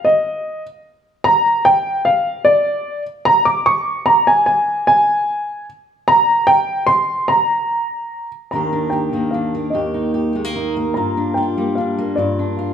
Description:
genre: folk.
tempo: 149 BPM.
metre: 3/4.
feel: straight.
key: Eb major.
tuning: A4 = 440 Hz.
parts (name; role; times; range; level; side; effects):
dark upright piano; melody; 0.0-12.7 s; D5 to D6; -15 LUFS; equal; none.
fingerpicked steel-string acoustic guitar; accompaniment; 8.5-12.7 s; Eb2 to G4; -19 LUFS; left 1 dB; none.
room: moderate large studio reverb, RT60 1.4 s.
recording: none.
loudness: -14 LUFS.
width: side -8 dB against mid.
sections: 0.0-8.5 A section; 8.5-12.7 B section.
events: none.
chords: 0.0 N.C.; 8.5 Ebmaj7; 11.0 Gm7.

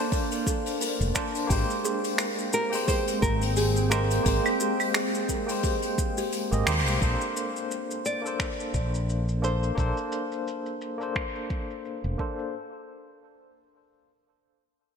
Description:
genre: sunset chillout.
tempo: 87 BPM.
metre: 4/4.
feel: swing 57% on 16ths.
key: Bb major.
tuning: A4 = 438 Hz.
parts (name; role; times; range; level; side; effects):
nylon-string guitar; melody; 0.0-9.8 s; Ab4 to F5; -31 LUFS; equal; digital delay.
barky tine electric piano; accompaniment; 0.0-12.6 s; Ab3 to A5; -31 LUFS; left 1 dB; medium tremolo, auto-pan, low-pass filter, ping-pong delay.
shimmering ambient pad; sustained chords; 0.0-7.0 s; Ab3 to G5; -34 LUFS; equal; chorus, built-in reverb.
kalimba; arpeggios; 0.1-7.0 s; G4 to C5; -34 LUFS; right 5 dB; ping-pong delay.
electronic kick drum; drums; 0.1-12.3 s; none; -30 LUFS; equal; none.
soft brush drum kit; drums; 0.1-12.5 s; claves, finger snaps, hi-hat, shaker; -31 LUFS; left 1 dB; low-pass filter on hats, low-pass filter on perc, low-pass filter on snare, low-pass filter on room.
mellow fretless electric bass; bass; 1.0-12.1 s; F1 to Eb2; -26 LUFS; equal; none.
room: moderate lush hall reverb, RT60 2.4 s.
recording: bright 1980s-style digital production.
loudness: -25 LUFS.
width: side -6 dB against mid.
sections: 0.0-7.0 A section; 7.0-12.5 B section.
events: kick drops out 6.3-7.0; band accent 6.7-7.0; filter sweep on tine electric piano 7.0-12.5.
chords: 0.0 Bbmaj9; 1.5 Abmaj9; 7.0 Bbmaj9.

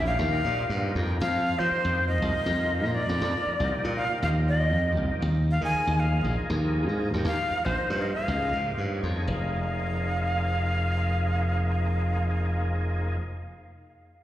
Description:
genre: electric jazz fusion.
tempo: 118 BPM.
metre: 4/4.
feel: straight.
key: F minor.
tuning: A4 = 439 Hz.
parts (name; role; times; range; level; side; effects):
breathy bright jazz flute; melody; 0.0-13.2 s; C5 to Ab5; -29 LUFS; equal; slapback echo, analog delay.
overdriven tonewheel organ; accompaniment; 0.0-13.2 s; F3 to Db5; -34 LUFS; equal; slow rotary speaker, chorus vibrato, slapback echo.
glassy slap bass; bass; 0.0-13.2 s; F1 to F3; -26 LUFS; equal; none.
room: light reverb.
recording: live gig heard through the venue's PA, recital hall reverb.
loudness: -24 LUFS.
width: side -13 dB against mid.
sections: 0.0-1.2 A section; 1.2-9.3 B section; 9.3-13.3 C section.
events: tonewheel organ fill 8.5-9.3.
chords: 0.2 Ebadd9; 1.2 F13sus4; 5.2 Eb9sus4; 9.3 Fm.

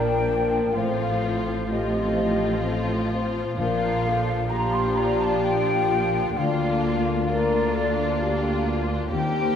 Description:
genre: classical, slow romantic movement for symphony orchestra.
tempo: 64 BPM.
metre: 3/4.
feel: rubato.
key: Bb major.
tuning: A4 = 439 Hz.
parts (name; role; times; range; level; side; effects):
muted symphonic violin section; melody; 0.0-9.6 s; D4 to G4; -32 LUFS; left 3 dB; none.
large flute ensemble; second line; 0.0-9.6 s; D5 to C6; -28 LUFS; left 3 dB; none.
muted symphonic violin section; second line; 0.0-9.6 s; Bb3 to D4; -34 LUFS; left 2 dB; none.
muted studio viola section; accompaniment; 0.0-9.6 s; F3 to Bb3; -31 LUFS; right 2 dB; none.
mellow French horn section; sustained chords; 0.0-9.6 s; F4 to C5; -27 LUFS; left 2 dB; none.
concert harp; arpeggios; 0.0-9.6 s; A2 to F5; -31 LUFS; left 5 dB; none.
muted studio cello section; bass; 0.0-9.6 s; D2 to Bb2; -30 LUFS; right 2 dB; none.
muted symphonic double bass section; bass; 0.0-9.6 s; A1 to Eb2; -30 LUFS; right 4 dB; none.
timpani; percussion; 3.6-4.9 s; Bb2; -36 LUFS; equal; none.
room: wet scoring stage reverb, RT60 2.0 s.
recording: none.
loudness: -21 LUFS.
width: side -8 dB against mid.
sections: 0.0-9.6 A section.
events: none.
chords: 0.0 Bb; 0.7 F7/A; 3.6 Bb; 6.4 Bb/D.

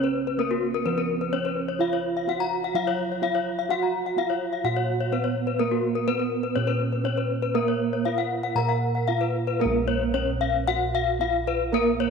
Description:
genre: Balinese gamelan.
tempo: 113-127 BPM.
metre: 4/4.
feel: straight.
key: Bb pelog.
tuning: A4 = 442 Hz.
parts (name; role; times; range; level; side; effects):
gamelan-type bronze metallophone; melody; 0.0-12.1 s; Bb3 to Bb4; -28 LUFS; right 11 dB; none.
gamelan-type bronze metallophone; arpeggios; 0.0-12.1 s; Gb4-40c to Bb5; -26 LUFS; left 8 dB; tape echo.
gamelan-type bossed gongs; bass; 0.0-12.1 s; Bb1 to Bb4; -29 LUFS; right 1 dB; none.
room: wet plate reverb, RT60 2.9 s.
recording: 1960s-style stereo with parts hard left and right.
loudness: -23 LUFS.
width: side -5 dB against mid.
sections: 0.0-9.6 A section; 9.6-12.1 B section.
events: none.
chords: none.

